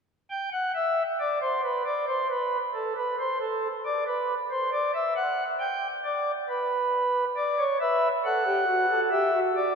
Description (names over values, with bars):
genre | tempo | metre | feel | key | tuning
classical, baroque-style 3-part fugue for pipe organ | 68 BPM | 4/4 | straight | unclear | A4 = 441 Hz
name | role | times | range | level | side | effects
pipe organ, flutes | solo | 0.3-9.8 s | F#4 to G5 | -24 LUFS | equal | none
room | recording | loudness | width
wet cathedral reverb, RT60 4.3 s | recorded in a church or concert hall | -24 LUFS | side -5 dB against mid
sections
0.3-9.8 A section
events
none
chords
0.3 N.C.; 7.4 D; 9.1 Em7